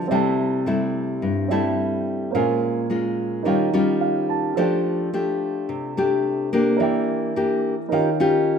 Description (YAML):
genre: bossa nova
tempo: 108 BPM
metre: 4/4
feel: straight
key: unclear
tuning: A4 = 440 Hz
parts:
  - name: nylon-string guitar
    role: accompaniment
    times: 0.0-8.6 s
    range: G2 to G4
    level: -20 LUFS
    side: left 2 dB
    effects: none
  - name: warm grand piano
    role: accompaniment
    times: 0.0-8.6 s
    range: F3 to A5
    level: -26 LUFS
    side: right 7 dB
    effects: none
room: moderate large studio reverb, RT60 1.3 s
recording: minimal, uncompressed stereo recording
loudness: -20 LUFS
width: side -7 dB against mid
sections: 0.0-8.6 A section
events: grand piano fill 3.7-4.6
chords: 0.1 C6; 2.3 Bbm7; 3.5 D#9; 4.6 F69; 6.8 Em7b5; 7.9 D#9